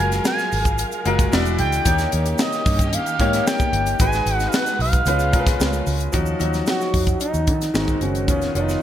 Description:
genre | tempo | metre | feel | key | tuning
polished 1980s jazz-funk pop | 112 BPM | 4/4 | straight | unclear | A4 = 445 Hz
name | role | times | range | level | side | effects
expressive synth lead | melody | 0.0-8.8 s | C#4 to G#5 | -24 LUFS | right 2 dB | chorus
clear baby grand piano | accompaniment | 0.0-8.8 s | D#3 to D5 | -24 LUFS | left 3 dB | wide subtle chorus
dark symphonic string section | sustained chords | 0.0-6.1 s | C#3 to E#5 | -30 LUFS | equal | none
vintage muted fingered electric bass | bass | 0.0-8.8 s | E1 to D#3 | -23 LUFS | equal | none
tight funk drum kit | drums | 0.1-8.8 s | hi-hat, kick drum, snare drum | -22 LUFS | equal | gated reverb
tube shaker | percussion | 0.1-8.8 s | none | -36 LUFS | right 10 dB | none
room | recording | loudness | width
light reverb, studio reverb | bright 1980s-style digital production | -17 LUFS | side -11 dB against mid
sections
0.0-6.1 A section; 6.1-8.8 B section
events
none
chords
0.0 F#maj9; 1.3 E9; 1.9 D#7; 4.0 G#m7; 5.1 C#7; 6.1 D#m9; 7.7 G#7; 8.3 C#9/E#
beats
0.26 0.79 1.32 | 1.86 2.39 2.93 3.46 | 4.00 4.53 5.07 5.60 | 6.14 6.67 7.21 7.75 | 8.28 8.82

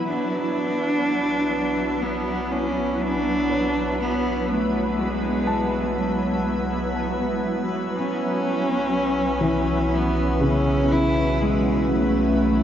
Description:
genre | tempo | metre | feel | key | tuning
ambient | 61 BPM | 4/4 | straight | B minor | A4 = 440 Hz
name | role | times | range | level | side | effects
shimmering ambient pad | sustained chords | 0.0-12.6 s | F#3 to B4 | -26 LUFS | equal | chorus, built-in reverb
felt-muted upright piano | arpeggios | 0.0-12.6 s | C#3 to A5 | -28 LUFS | left 1 dB | diffuse ambient delay
hand-pumped harmonium | drone | 0.0-12.6 s | B3 to B4 | -32 LUFS | right 2 dB | none
drifting glass-harmonics texture | texture | 0.0-12.6 s | E6 | -41 LUFS | left 4 dB | chorus, built-in reverb
rich cello | melody | 0.1-12.6 s | F#3 to E4 | -24 LUFS | equal | diffuse ambient delay
deep rumbling drone | bass | 1.2-12.6 s | B1 | -30 LUFS | equal | built-in reverb
room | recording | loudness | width
wet huge ambient reverb, RT60 8.4 s | dark, warm production, nothing above 7.7 kHz | -20 LUFS | side -10 dB against mid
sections
0.1-12.6 A section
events
fade-in on synth drone 0.1-12.6; fade-in on synth texture 0.1-12.6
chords
0.1 Bm7; 7.9 F#7(no3)/B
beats
| 0.07 1.05 2.04 3.02 | 4.00 4.99 5.97 6.96 | 7.94 8.92 9.91 10.89 | 11.87

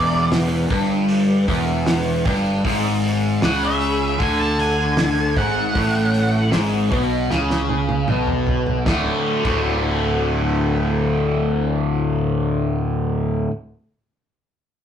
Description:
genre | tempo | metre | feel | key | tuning
psychedelic rock | 77 BPM | 4/4 | straight | D lydian | A4 = 440 Hz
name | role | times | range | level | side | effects
octave-fuzz lead guitar | melody | 0.0-6.5 s | D5 to A5 | -23 LUFS | right 2 dB | distortion
cranked stack guitar | riff | 0.0-13.5 s | D2 to F#4 | -19 LUFS | left 1 dB | overdrive, phaser
fuzz fingered electric bass | bass | 0.0-13.5 s | D1 to D2 | -25 LUFS | equal | overdrive
cloth-damped thuddy drum kit | drums | 0.3-9.7 s | crash cymbal, hi-hat, kick drum, snare drum, toms | -24 LUFS | equal | none
room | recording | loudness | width
wet studio reverb, RT60 0.6 s | rough rehearsal-room recording, tube saturation | -17 LUFS | side -9 dB against mid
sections
0.0-8.9 A section; 8.9-12.0 B section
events
lead electric guitar solo 0.0-8.9; drum fill 7.3-8.9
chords
0.0 N.C.; 2.6 Bm13/G#; 8.9 D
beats
0.32 1.10 1.87 | 2.65 3.42 4.20 4.98 | 5.76 6.53 7.31 8.09 | 8.87 9.65 10.43 11.21

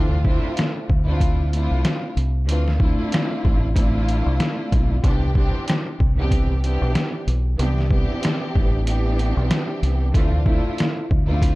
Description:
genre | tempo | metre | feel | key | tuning
hip hop, boom-bap hip-hop | 94 BPM | 4/4 | swing 57% on 16ths | D dorian | A4 = 440 Hz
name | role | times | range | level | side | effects
warm studio string section | accompaniment | 0.0-11.6 s | E3 to G4 | -26 LUFS | equal | cassette tape, high-pass filter, low-pass filter, plate reverb
deep dub fingered electric bass | bass | 0.0-11.6 s | A1 to D2 | -20 LUFS | equal | none
trip hop sampler-style drum kit | drums | 0.2-11.6 s | hi-hat, kick drum, rim click, snare drum | -21 LUFS | equal | overdrive
room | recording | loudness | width
little or no reverb | dark, warm production | -18 LUFS | side -20 dB against mid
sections
0.0-11.6 A section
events
kick muted 8.9-10.1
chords
0.0 Dm7; 5.0 Cmaj7; 10.1 Dm7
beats
0.57 1.21 1.85 | 2.48 3.12 3.76 4.40 | 5.04 5.68 6.31 6.95 | 7.59 8.23 8.87 9.51 | 10.14 10.78 11.42

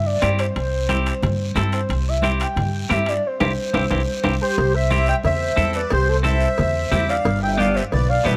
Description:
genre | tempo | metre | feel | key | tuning
latin, cumbia | 179 BPM | 4/4 | straight | C major | A4 = 441 Hz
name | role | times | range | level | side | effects
pure sine lead | second line | 0.0-8.3 s | G4 to G5 | -27 LUFS | equal | chorus
upright bass | bass | 0.0-8.4 s | G1 to G2 | -24 LUFS | equal | none
clean electric guitar | accompaniment | 0.2-8.4 s | B3 to A4 | -28 LUFS | equal | none
congas | percussion | 0.2-8.4 s | none | -30 LUFS | equal | none
guiro | percussion | 0.2-8.4 s | none | -38 LUFS | equal | none
timbales and cowbell | percussion | 0.2-8.4 s | none | -31 LUFS | equal | none
accordion | melody | 4.4-8.3 s | C5 to G5 | -25 LUFS | equal | light tremolo tuning
room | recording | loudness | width
light reverb | none | -20 LUFS | mono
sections
0.0-4.6 A section; 4.6-8.4 B section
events
soft synth lead solo 0.0-4.6; band accent 3.2-4.6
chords
0.0 C; 7.2 G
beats
0.22 | 0.55 0.89 1.23 1.56 | 1.90 2.23 2.57 2.90 | 3.24 3.57 3.90 4.24 | 4.57 4.91 5.24 5.58 | 5.91 6.25 6.58 6.92 | 7.25 7.58 7.92 8.25

